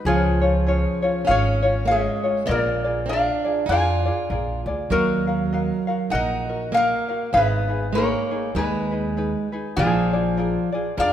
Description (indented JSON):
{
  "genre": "Hawaiian",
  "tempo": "99 BPM",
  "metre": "4/4",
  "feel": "swing 59% on 8ths",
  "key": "Eb minor",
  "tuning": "A4 = 441 Hz",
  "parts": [
    { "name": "tenor ukulele", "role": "accompaniment", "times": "0.0-11.1 s", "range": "Db4 to F5", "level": "-26 LUFS", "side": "left 2 dB", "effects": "none" },
    { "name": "metal-body resonator slide guitar", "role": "melody", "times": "0.1-11.1 s", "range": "F4 to Ab5", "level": "-23 LUFS", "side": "left 1 dB", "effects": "none" },
    { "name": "picked plugged-in steel-string acoustic guitar", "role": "second line", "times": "0.1-11.1 s", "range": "F3 to F4", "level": "-25 LUFS", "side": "right 2 dB", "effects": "none" },
    { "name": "upright bass", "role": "bass", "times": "0.1-11.1 s", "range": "Ab1 to F2", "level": "-26 LUFS", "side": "right 1 dB", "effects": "none" }
  ],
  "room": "moderate scoring stage reverb, RT60 2.1 s",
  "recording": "minimal, uncompressed stereo recording",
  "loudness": "-19 LUFS",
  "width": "side -10 dB against mid",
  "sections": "0.0-11.1 A section",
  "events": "none",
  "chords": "0.1 Db; 2.5 Bb7; 4.9 Ebmadd9; 7.3 Abmadd9; 9.8 Bb7"
}